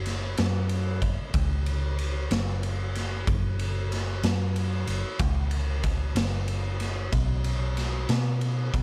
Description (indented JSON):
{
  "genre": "slow blues",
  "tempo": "62 BPM (dotted quarters)",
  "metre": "12/8",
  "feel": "straight",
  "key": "unclear",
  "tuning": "A4 = 444 Hz",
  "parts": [
    { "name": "hollow-body short-scale fingered electric bass", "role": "bass", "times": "0.0-8.8 s", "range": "F#1 to B2", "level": "-29 LUFS", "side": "equal", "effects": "none" },
    { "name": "raw garage drum kit", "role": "drums", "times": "0.1-8.8 s", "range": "kick drum, ride cymbal, snare drum", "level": "-32 LUFS", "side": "equal", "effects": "none" }
  ],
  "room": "little or no reverb",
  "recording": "none",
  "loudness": "-27 LUFS",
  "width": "mono",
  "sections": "0.0-8.8 A section",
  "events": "none",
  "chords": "none"
}